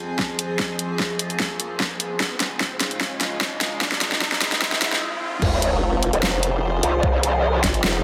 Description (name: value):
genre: heavy wobble dubstep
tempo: 149 BPM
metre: 4/4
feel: half-time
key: F minor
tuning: A4 = 440 Hz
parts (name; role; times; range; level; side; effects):
- evolving wavetable pad; sustained chords; 0.0-8.0 s; F2 to C5; -31 LUFS; equal; chorus, built-in reverb, phaser, sidechain pumping
- riser and sub drop; sound effects; 1.2-7.0 s; none; -34 LUFS; equal; none
- dubstep drum kit; drums; 0.2-7.9 s; crash cymbal, hi-hat, snare drum; -25 LUFS; equal; overdrive, small room ambience
- electronic kick drum; drums; 0.2-7.7 s; none; -28 LUFS; equal; overdrive, small room ambience
- growl bass; bass; 5.4-7.6 s; Eb1 to C2; -22 LUFS; equal; chorus, overdrive
- formant-sweep wobble bass; bass; 5.7-8.0 s; F1 to Ab1; -24 LUFS; equal; chorus, overdrive
room: moderate lush hall reverb, RT60 1.9 s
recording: high-pass filter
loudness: -22 LUFS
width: mono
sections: 0.0-5.4 A section; 5.4-8.0 B section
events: build-up 0.0-5.4; drum fill 0.0-5.0; riser 1.2-5.4; break 5.0-5.4; drop 5.4-8.0; impact 5.4-7.0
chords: 0.0 Fm; 2.2 Dbadd9; 3.8 Ab; 5.4 Fm